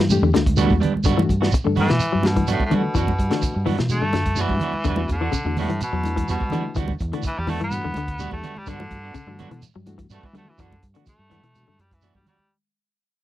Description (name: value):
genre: afrobeat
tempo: 126 BPM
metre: 4/4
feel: straight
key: unclear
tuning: A4 = 440 Hz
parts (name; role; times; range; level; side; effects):
- semi-hollow electric guitar; arpeggios; 0.0-11.8 s; C#3 to F#3; -26 LUFS; left 7 dB; none
- clean electric guitar; stabs; 0.0-12.4 s; F#3 to F#4; -28 LUFS; right 9 dB; none
- fingered electric bass; bass; 0.0-12.4 s; D2 to G3; -24 LUFS; equal; none
- crunchy breakbeat drum kit; drums; 0.0-12.4 s; hi-hat, kick drum, snare drum; -24 LUFS; equal; none
- reed electric piano; accompaniment; 0.1-12.3 s; E3 to A4; -27 LUFS; left 4 dB; fast tremolo
- congas; percussion; 0.1-12.5 s; none; -28 LUFS; right 1 dB; none
- shekere; percussion; 0.1-12.4 s; none; -30 LUFS; right 4 dB; none
- raspy baritone saxophone; melody; 1.8-12.5 s; A2 to B3; -27 LUFS; equal; none
room: little or no reverb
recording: dry, close 1970s-style studio recording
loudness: -19 LUFS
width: side -14 dB against mid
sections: 0.0-12.5 A section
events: baritone saxophone solo 0.0-12.5; fade-out 0.3-12.5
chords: 0.0 Em9; 1.1 Gmaj7; 4.8 Em9; 8.7 Gmaj7